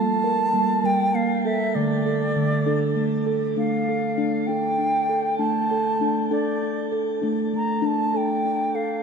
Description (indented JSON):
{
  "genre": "world meditative, meditative tuned percussion",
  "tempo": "66 BPM (dotted quarters)",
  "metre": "6/8",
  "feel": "straight",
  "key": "D minor",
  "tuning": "A4 = 440 Hz",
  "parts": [
    { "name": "bright bansuri", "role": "melody", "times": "0.0-9.0 s", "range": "D5 to Bb5", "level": "-25 LUFS", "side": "equal", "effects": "shimmer reverb, ping-pong delay" },
    { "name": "steel tongue drum", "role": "arpeggios", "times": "0.0-9.0 s", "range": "D3 to Bb4", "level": "-22 LUFS", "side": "right 1 dB", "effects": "shimmer reverb" }
  ],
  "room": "wet echo chamber reverb, RT60 1.9 s, small room reverb",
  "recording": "dark, warm production",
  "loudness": "-20 LUFS",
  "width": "side -5 dB against mid",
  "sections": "0.0-3.6 A section; 3.6-9.0 B section",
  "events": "none",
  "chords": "0.0 Gm; 1.8 D5; 3.6 Dm"
}